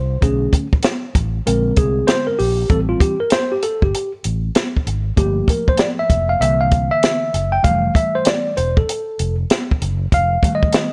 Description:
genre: hip hop, jazz-hop.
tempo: 97 BPM.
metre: 4/4.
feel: swing 63% on 16ths.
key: unclear.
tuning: A4 = 439 Hz.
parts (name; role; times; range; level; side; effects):
mellow tine electric piano; accompaniment; 0.0-10.9 s; D3 to G5; -21 LUFS; equal; none.
fretless electric bass; bass; 0.0-10.4 s; E1 to C2; -22 LUFS; equal; none.
compact cocktail drum kit; drums; 0.2-10.9 s; hi-hat, kick drum, snare drum; -19 LUFS; equal; none.
room: light reverb.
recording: none.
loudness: -18 LUFS.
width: mono.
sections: 0.0-10.9 A section.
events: tine electric piano solo 0.0-10.9.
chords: 0.2 Bm7; 1.5 Bb9; 2.7 Am7; 5.2 Gm7; 6.4 C7; 7.6 Fmaj7; 10.1 F7.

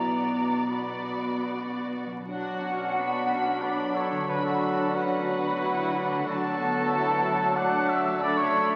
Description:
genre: classical, slow romantic movement for symphony orchestra.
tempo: 91 BPM.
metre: 3/4.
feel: uneven beats, rubato.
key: B minor.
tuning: A4 = 440 Hz.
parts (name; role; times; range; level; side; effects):
warm symphonic violin section; melody; 0.0-8.8 s; D5 to B5; -40 LUFS; equal; none.
concert flute; second line; 0.0-8.7 s; F#5 to F#6; -34 LUFS; equal; none.
rich symphonic violin section; second line; 0.0-8.8 s; D4 to D5; -39 LUFS; equal; none.
rich symphonic viola section; accompaniment; 0.0-8.8 s; A3 to F#4; -36 LUFS; equal; none.
concert harp; arpeggios; 0.0-8.8 s; F#2 to A4; -43 LUFS; equal; none.
clear studio double bass section; bass; 0.0-8.8 s; F#1 to D2; -46 LUFS; equal; none.
rich symphonic cello section; bass; 0.0-8.8 s; F#2 to D3; -43 LUFS; equal; none.
mellow cor anglais; second line; 2.3-8.7 s; D4 to D5; -38 LUFS; equal; none.
warm clarinet; second line; 2.3-8.8 s; D4; -40 LUFS; equal; none.
warm bassoon; accompaniment; 2.3-8.8 s; F#3 to A3; -36 LUFS; equal; none.
mellow French horn section; sustained chords; 2.3-8.8 s; F#3 to D4; -35 LUFS; equal; none.
clear trumpet; stabs; 2.3-8.7 s; F#4 to F#5; -32 LUFS; equal; none.
room: wet concert hall reverb, RT60 2.4 s.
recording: very old 78 rpm record, vinyl crackle.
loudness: -27 LUFS.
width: mono.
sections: 0.0-2.3 A section; 2.3-8.8 B section.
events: none.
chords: 0.0 Bm; 4.3 Bm/D; 6.3 D; 8.2 D/F#.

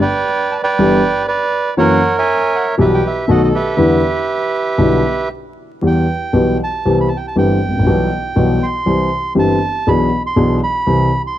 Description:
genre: tango.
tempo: 119 BPM.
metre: 4/4.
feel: rubato.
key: E minor.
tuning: A4 = 436 Hz.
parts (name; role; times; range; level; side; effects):
bandoneon; melody; 0.0-11.4 s; G4 to C6; -17 LUFS; right 3 dB; none.
warm concert grand piano; accompaniment; 0.8-11.1 s; G1 to G#4; -14 LUFS; left 1 dB; none.
room: studio ambience.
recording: dry, close 1970s-style studio recording, vinyl crackle.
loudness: -13 LUFS.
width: side -12 dB against mid.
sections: 0.0-5.8 A section; 5.8-11.4 A section.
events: none.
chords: 0.0 G; 0.8 Em7/G; 1.8 F#7; 2.8 Em/B; 3.3 B7; 3.8 Em7; 5.8 Em; 6.9 Cmaj7; 7.9 Em/B; 8.9 C; 9.9 E7/B; 10.9 C.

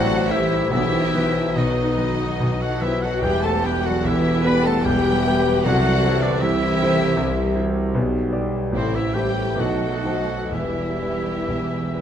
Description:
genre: classical, romantic movement for piano and orchestra.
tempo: 60-80 BPM.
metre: 3/4.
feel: rubato.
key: E minor.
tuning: A4 = 440 Hz.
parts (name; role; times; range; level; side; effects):
clear concert grand piano; melody; 0.0-12.0 s; E1 to D5; -22 LUFS; left 1 dB; none.
warm studio violin section; melody; 0.0-12.0 s; C5 to B5; -30 LUFS; left 3 dB; none.
bright clarinet; second line; 0.0-12.0 s; C4 to B4; -32 LUFS; left 2 dB; none.
clear oboe; second line; 0.0-12.0 s; C5 to B5; -30 LUFS; right 1 dB; none.
mellow hollow small flute group; second line; 0.0-12.0 s; A4 to G5; -31 LUFS; left 4 dB; none.
rich studio violin section; second line; 0.0-12.0 s; E4 to D5; -32 LUFS; left 2 dB; none.
warm studio viola section; accompaniment; 0.0-12.0 s; C4 to B4; -29 LUFS; equal; none.
dark French horn section; sustained chords; 0.0-12.0 s; D#4 to C5; -30 LUFS; left 7 dB; none.
warm trombone section; sustained chords; 0.0-12.0 s; D#3 to C4; -31 LUFS; right 6 dB; none.
warm studio cello section; bass; 0.0-12.0 s; C3 to B3; -29 LUFS; right 2 dB; none.
warm studio double bass section; bass; 0.0-12.0 s; A1 to E2; -32 LUFS; right 3 dB; none.
warm tuba; bass; 0.0-12.0 s; E1 to C2; -30 LUFS; right 5 dB; none.
timpani; percussion; 0.7-1.9 s; B2; -31 LUFS; left 1 dB; none.
room: moderate recital hall reverb, RT60 1.7 s.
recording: close, detailed microphones.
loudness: -18 LUFS.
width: side -9 dB against mid.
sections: 0.0-12.0 A section.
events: none.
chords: 0.0 Am7; 0.7 B; 3.2 Em; 5.7 C; 8.0 G/B; 8.8 Am; 9.6 B7b9; 10.5 Em.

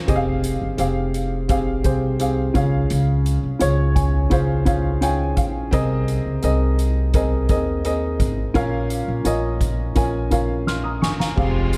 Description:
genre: piano-driven pop.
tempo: 85 BPM.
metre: 4/4.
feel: straight.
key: unclear.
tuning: A4 = 440 Hz.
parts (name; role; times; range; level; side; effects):
dark upright piano; accompaniment; 0.0-11.8 s; Bb2 to F6; -25 LUFS; equal; none.
upright bass; bass; 0.1-11.8 s; F1 to Eb2; -24 LUFS; equal; none.
soft-mallet drum kit; drums; 0.1-11.8 s; crash cymbal, hi-hat, kick drum, snare drum; -26 LUFS; equal; none.
bright studio string section; sustained chords; 11.4-11.8 s; F3 to F4; -31 LUFS; equal; none.
room: light reverb, small room ambience.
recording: dark, warm production.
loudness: -21 LUFS.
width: mono.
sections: 0.0-11.4 A section.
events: upright piano fill 3.6-5.7; drum fill 10.7-11.4.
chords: 0.1 Fmadd9; 2.6 Db; 5.7 Abadd9/C; 8.6 Bbm.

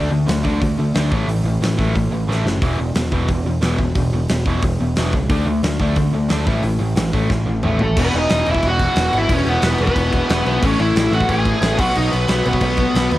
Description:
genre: punk rock.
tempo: 180 BPM.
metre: 4/4.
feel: straight.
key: unclear.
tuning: A4 = 440 Hz.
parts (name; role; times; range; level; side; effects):
distorted electric guitar; riff; 0.0-13.2 s; E2 to D4; -25 LUFS; right 5 dB; overdrive, cassette tape.
overdriven semi-hollow guitar; riff; 0.0-13.2 s; E2 to D4; -24 LUFS; left 5 dB; cassette tape.
growling picked electric bass; bass; 0.0-13.2 s; E1 to D#2; -20 LUFS; equal; overdrive.
big rock drum kit; drums; 0.3-13.2 s; crash cymbal, hi-hat, kick drum, snare drum, toms; -21 LUFS; equal; cassette tape.
high-gain lead guitar; melody; 7.8-13.1 s; A3 to G#5; -19 LUFS; equal; distortion, cassette tape.
room: studio reverb.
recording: home recording on cassette.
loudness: -15 LUFS.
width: side -15 dB against mid.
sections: 0.0-8.0 A section; 8.0-13.2 B section.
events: drum fill 2.3-2.6, 7.3-8.0.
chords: 0.0 D5; 1.1 A5; 2.6 E5; 5.3 D5; 6.5 A5; 8.0 E5; 10.6 A; 11.8 B.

